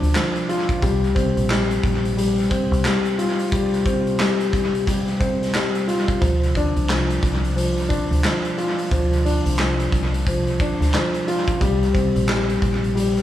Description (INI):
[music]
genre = hip hop, boom-bap hip-hop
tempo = 89 BPM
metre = 4/4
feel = swing 61% on 16ths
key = D minor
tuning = A4 = 440 Hz
[part]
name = dark grand piano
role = accompaniment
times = 0.0-13.2 s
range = F3 to F4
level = -21 LUFS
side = left 1 dB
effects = high-pass filter, low-pass filter
[part]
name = deep dub fingered electric bass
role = bass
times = 0.0-13.2 s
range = Bb1 to D2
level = -22 LUFS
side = equal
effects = none
[part]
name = raw garage drum kit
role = drums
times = 0.0-13.2 s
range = handclaps, hi-hat, kick drum, snare drum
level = -23 LUFS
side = equal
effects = tape echo
[sound]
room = light reverb, studio reverb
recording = echo-heavy mix, small room reverb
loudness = -18 LUFS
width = side -12 dB against mid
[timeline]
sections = 0.0-13.2 A section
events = none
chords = 0.0 Dm; 0.8 C7sus4; 6.2 Dm; 11.6 C7(no3)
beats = 0.15 | 0.82 1.50 2.17 2.85 | 3.52 4.20 4.87 5.54 | 6.22 6.89 7.57 8.24 | 8.91 9.59 10.26 10.94 | 11.61 12.29 12.96